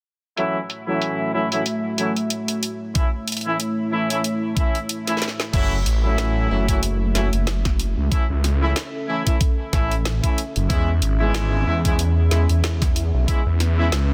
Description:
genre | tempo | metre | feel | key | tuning
glitch hop | 93 BPM | 4/4 | swing 56% on 16ths | F# minor | A4 = 441 Hz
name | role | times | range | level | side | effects
dark analog pad | sustained chords | 0.8-14.1 s | A3 to E5 | -31 LUFS | equal | chorus, vintage 12-bit sampler grit, sidechain pumping
mellow horn section | stabs | 0.4-13.9 s | E3 to E4 | -28 LUFS | equal | sidechain pumping, low-pass filter, tape echo
drum and bass drum kit | drums | 0.4-14.1 s | crash cymbal, hi-hat, snare drum | -30 LUFS | equal | overdrive, low-pass filter on hats, low-pass filter on snare, low-pass filter on cymbals
electronic kick drum | drums | 3.0-13.4 s | none | -23 LUFS | equal | overdrive
phased detuned saw bass | bass | 5.5-14.1 s | F#1 to E2 | -22 LUFS | equal | phaser, tube saturation
room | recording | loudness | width
light reverb, digital ambience | dense, heavily limited modern master | -21 LUFS | mono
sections
0.4-5.5 A section; 5.5-14.1 B section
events
kick drops out 4.9-5.5; drum fill 5.1-5.5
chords
0.4 F#m7; 3.0 A; 5.5 F#m7; 10.7 E6

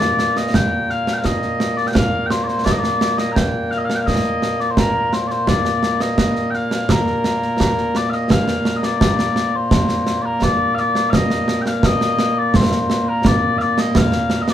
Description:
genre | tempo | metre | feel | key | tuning
scottish traditional, Scottish pipe music | 85 BPM | 2/4 | straight | Bb major | A4 = 440 Hz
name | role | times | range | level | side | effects
mellow small bagpipes | melody | 0.0-14.5 s | Bb2 to Bb5 | -18 LUFS | left 1 dB | none
concert snare drum and concert bass drum | drums | 0.0-14.5 s | none | -18 LUFS | right 1 dB | none
room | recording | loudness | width
moderate studio ambience, RT60 0.5 s | band playing live in one room | -15 LUFS | side -10 dB against mid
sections
0.0-8.3 A section; 8.3-14.5 B section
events
none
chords
none

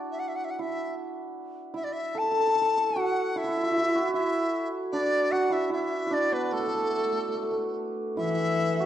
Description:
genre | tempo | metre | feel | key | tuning
chinese traditional, Chinese chamber ensemble | 74 BPM | 2/4 | rubato | A zhi mode | A4 = 440 Hz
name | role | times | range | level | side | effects
hammered dulcimer | second line | 0.0-8.9 s | A3 to A4 | -28 LUFS | right 2 dB | none
mellow dizi | melody | 0.1-8.9 s | A4 to A5 | -28 LUFS | left 2 dB | none
dark cello | second line | 8.2-8.9 s | E3 | -28 LUFS | left 4 dB | none
room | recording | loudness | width
wet recital hall reverb, RT60 1.3 s | dark, warm production | -25 LUFS | side -11 dB against mid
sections
0.0-8.2 A section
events
none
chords
none

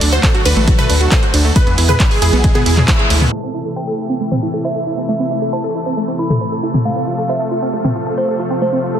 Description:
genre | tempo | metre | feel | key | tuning
uplifting trance | 136 BPM | 4/4 | straight | A minor | A4 = 442 Hz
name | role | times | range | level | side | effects
supersaw pad | sustained chords | 0.0-9.0 s | B2 to A4 | -22 LUFS | left 1 dB | sidechain pumping
wide unison pluck | arpeggios | 0.0-9.0 s | F#3 to C5 | -20 LUFS | right 2 dB | cassette tape, sidechain pumping, ping-pong delay
gritty driven synth bass | bass | 0.0-3.3 s | A1 to E2 | -14 LUFS | equal | sidechain pumping
punchy analog drum machine | drums | 0.0-7.9 s | handclaps, hi-hat, ride cymbal, toms | -18 LUFS | equal | sidechain pumping on hats, low-pass filter on hats, sidechain pumping on cymbals, low-pass filter on cymbals, low-pass filter on snare, sidechain pumping on toms, low-pass filter on toms, low-pass filter on room
wide unison pluck | melody | 0.1-3.2 s | E4 to C5 | -22 LUFS | right 1 dB | sidechain pumping, ping-pong delay
warm grand piano | second line | 0.1-3.2 s | E4 to C5 | -26 LUFS | left 1 dB | sidechain pumping, ping-pong delay
electronic kick drum | drums | 0.2-3.0 s | none | -14 LUFS | equal | none
glassy synth bell | second line | 3.3-9.0 s | C5 to B5 | -22 LUFS | right 1 dB | chorus, ping-pong delay
room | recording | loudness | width
moderate lush hall reverb, RT60 1.9 s | dense, heavily limited modern master, low-pass filter | -13 LUFS | side -9 dB against mid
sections
0.0-3.3 A section; 3.3-9.0 B section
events
drop 0.0-3.3; band accent 2.9; filter sweep on drum 3.3-9.0; filter sweep on synth pluck 3.3-9.0; filter sweep 3.3-9.0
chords
0.0 D; 1.6 E; 3.3 Am; 6.9 F

